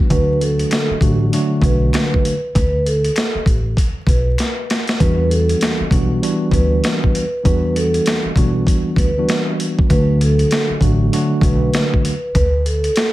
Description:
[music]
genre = hip hop, boom-bap hip-hop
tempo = 98 BPM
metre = 4/4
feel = swing 60% on 16ths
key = E minor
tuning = A4 = 438 Hz
[part]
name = mellow tine electric piano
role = accompaniment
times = 0.0-12.1 s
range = D3 to F#4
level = -19 LUFS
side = equal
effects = medium stereo tremolo, cassette tape, high-pass filter, low-pass filter
[part]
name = vibraphone with soft mallets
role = melody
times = 0.1-13.1 s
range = A4 to B4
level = -22 LUFS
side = right 1 dB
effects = high-pass filter, low-pass filter, ping-pong delay
[part]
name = upright bass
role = bass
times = 0.1-12.9 s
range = A1 to E2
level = -18 LUFS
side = equal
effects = none
[part]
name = boom bap sampler-style drum kit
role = drums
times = 0.1-13.1 s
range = hi-hat, kick drum, snare drum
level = -18 LUFS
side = equal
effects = none
[part]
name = finger snaps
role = percussion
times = 0.7-4.6 s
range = none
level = -32 LUFS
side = left 5 dB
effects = none
[sound]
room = light reverb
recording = vinyl crackle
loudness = -14 LUFS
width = side -16 dB against mid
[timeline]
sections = 0.0-5.0 A section; 5.0-13.1 A section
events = drum fill 4.4-5.0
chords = 0.1 D; 5.0 Em7; 9.9 D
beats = | 0.10 0.72 1.33 1.94 | 2.55 3.17 3.78 4.39 | 5.00 5.61 6.23 6.84 | 7.45 8.06 8.68 9.29 | 9.90 10.51 11.12 11.74 | 12.35 12.96

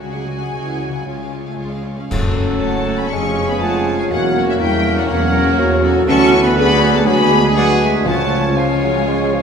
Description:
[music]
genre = classical, dramatic, fast romantic movement for symphony orchestra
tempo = 120 BPM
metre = 4/4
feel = straight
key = F# minor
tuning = A4 = 439 Hz
[part]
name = warm symphonic violin section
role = melody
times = 0.0-9.4 s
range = E5 to C#6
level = -22 LUFS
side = left 4 dB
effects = none
[part]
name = rich chamber violin section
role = second line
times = 0.0-9.4 s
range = E#4 to F#5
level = -28 LUFS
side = left 6 dB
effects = none
[part]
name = rich symphonic viola section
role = accompaniment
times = 0.0-9.4 s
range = E3 to G#4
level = -25 LUFS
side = right 2 dB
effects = none
[part]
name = mellow French horn section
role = sustained chords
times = 0.0-9.4 s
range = G#3 to G#4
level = -21 LUFS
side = left 1 dB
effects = none
[part]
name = concert harp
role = arpeggios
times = 0.0-9.4 s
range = E2 to C#5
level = -25 LUFS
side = left 6 dB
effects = none
[part]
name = rich symphonic cello section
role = bass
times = 0.0-9.4 s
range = C#3 to C#4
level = -24 LUFS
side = right 5 dB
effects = none
[part]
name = rich symphonic double bass section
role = bass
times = 0.0-9.4 s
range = C#2 to F#2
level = -25 LUFS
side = right 5 dB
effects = none
[part]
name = bright clarinet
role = second line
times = 2.1-9.4 s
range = G#4 to C#5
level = -26 LUFS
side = left 2 dB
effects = none
[part]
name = mellow bassoon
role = accompaniment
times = 2.1-9.4 s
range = D3 to A#3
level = -24 LUFS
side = equal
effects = none
[part]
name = warm trombone section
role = sustained chords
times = 2.1-9.4 s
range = E#3 to D4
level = -28 LUFS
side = right 3 dB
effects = none
[part]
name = bright trumpet section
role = stabs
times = 2.1-9.4 s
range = G#4 to C#5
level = -23 LUFS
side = right 1 dB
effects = none
[part]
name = mellow tuba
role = bass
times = 2.1-9.4 s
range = E1 to D2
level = -23 LUFS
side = right 3 dB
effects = none
[part]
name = clash cymbals and concert bass drum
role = percussion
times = 2.1-3.1 s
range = none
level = -25 LUFS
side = equal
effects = none
[part]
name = silver concert flute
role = second line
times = 2.6-9.4 s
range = C#5 to A5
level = -26 LUFS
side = equal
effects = none
[part]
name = timpani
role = percussion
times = 8.1-8.8 s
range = C#3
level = -28 LUFS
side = equal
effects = none
[sound]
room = wet scoring stage reverb, RT60 1.6 s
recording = minimal, uncompressed stereo recording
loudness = -13 LUFS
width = side -6 dB against mid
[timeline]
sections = 0.0-2.1 A section; 2.1-9.4 B section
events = band accent 2.1-2.6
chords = 0.0 C#sus4; 1.1 C#; 2.1 F#m; 3.1 C#/E#; 4.1 F#7/E; 6.1 Bm/D; 7.1 G#m7b5/D; 8.1 C#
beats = | 0.02 0.55 1.07 1.59 | 2.11 2.62 3.12 3.61 | 4.11 4.61 5.10 5.59 | 6.09 6.57 7.07 7.56 | 8.06 8.57 9.08

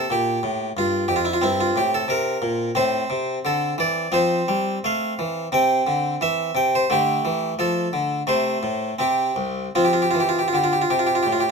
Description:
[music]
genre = classical, baroque-style suite movement for harpsichord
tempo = 87 BPM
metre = 4/4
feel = uneven beats, rubato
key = F major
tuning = A4 = 438 Hz
[part]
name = harpsichord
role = solo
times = 0.0-11.5 s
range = C2 to G5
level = -19 LUFS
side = equal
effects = none
[sound]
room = moderate stone room reverb, RT60 1.1 s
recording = close, detailed microphones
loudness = -19 LUFS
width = side -5 dB against mid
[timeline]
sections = 0.0-11.5 A section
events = none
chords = 0.0 Bb5; 1.4 C5/G; 2.8 Amadd11; 4.1 F; 5.5 C; 6.9 Dm; 8.3 Am; 9.0 N.C.; 9.7 F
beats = 0.11 0.77 | 1.43 2.09 2.76 3.44 | 4.12 4.84 5.53 6.21 | 6.91 7.59 8.27 8.99 | 9.74 10.51 11.26

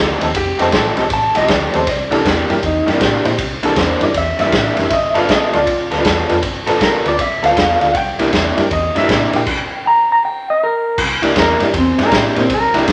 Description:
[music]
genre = electric blues shuffle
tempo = 158 BPM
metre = 4/4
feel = swing 64% on 8ths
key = C mixolydian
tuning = A4 = 439 Hz
[part]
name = electric guitar through a small old amp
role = melody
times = 0.0-12.9 s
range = C4 to Bb5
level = -19 LUFS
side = equal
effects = none
[part]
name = overdriven electric guitar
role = riff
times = 0.0-12.9 s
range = C3 to A4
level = -23 LUFS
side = equal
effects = none
[part]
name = vintage muted fingered electric bass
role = bass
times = 0.0-12.9 s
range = F1 to Bb2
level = -28 LUFS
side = equal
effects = none
[part]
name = clear upright piano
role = accompaniment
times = 0.2-12.8 s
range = C4 to D5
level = -23 LUFS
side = equal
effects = none
[part]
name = raw garage drum kit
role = drums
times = 0.2-12.9 s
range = crash cymbal, kick drum, ride cymbal, snare drum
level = -20 LUFS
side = equal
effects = none
[part]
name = bright upright piano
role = second line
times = 0.4-1.0, 4.9-9.2 s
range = F4 to G5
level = -22 LUFS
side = equal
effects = none
[sound]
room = moderate large studio reverb, RT60 1.3 s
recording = nothing above 11.0 kHz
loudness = -15 LUFS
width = mono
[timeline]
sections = 0.0-11.0 A section; 11.0-12.9 B section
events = clean electric guitar solo 11.0-12.9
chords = 0.0 F9; 1.9 C9; 4.9 G9; 8.0 C9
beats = | 0.34 0.73 1.11 1.49 | 1.87 2.25 2.63 3.01 | 3.39 3.77 4.15 4.53 | 4.91 5.29 5.67 6.05 | 6.43 6.81 7.19 7.57 | 7.95 8.33 8.71 9.09 | 9.47 9.85 10.23 10.61 | 10.99 11.37 11.74 12.12 | 12.50 12.88

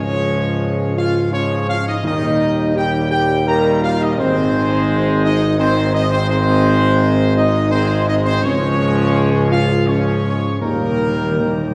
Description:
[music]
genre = classical, ceremonial fanfare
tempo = 84 BPM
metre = 3/4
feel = straight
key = Ab major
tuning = A4 = 441 Hz
[part]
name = dark trumpet section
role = melody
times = 0.0-11.7 s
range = Bb4 to Bb5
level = -24 LUFS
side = equal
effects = none
[part]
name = clear trombone section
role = sustained chords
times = 0.0-11.7 s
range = Eb3 to Ab3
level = -26 LUFS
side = equal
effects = none
[part]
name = dark French horn section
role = sustained chords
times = 0.0-11.7 s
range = Bb3 to Bb4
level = -23 LUFS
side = equal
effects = none
[part]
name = pipe organ, plenum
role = sustained chords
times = 0.0-11.7 s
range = Ab2 to Ab4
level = -26 LUFS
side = equal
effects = none
[part]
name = warm tuba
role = bass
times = 0.0-11.7 s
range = Ab1 to Eb2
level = -21 LUFS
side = equal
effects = none
[part]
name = timpani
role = percussion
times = 2.0-3.1, 10.6-11.7 s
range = Eb3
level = -29 LUFS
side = equal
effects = none
[sound]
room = wet concert hall reverb, RT60 1.8 s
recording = heard from further back in the room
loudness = -16 LUFS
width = mono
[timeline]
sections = 0.0-11.7 A section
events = timpani fill 10.6-11.7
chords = 0.0 Db; 2.0 Eb; 4.2 Ab; 8.4 Db; 10.6 Eb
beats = 0.61 1.33 | 2.04 2.76 3.47 | 4.18 4.88 5.58 | 6.29 6.99 7.71 | 8.42 9.14 9.87 | 10.61 11.37

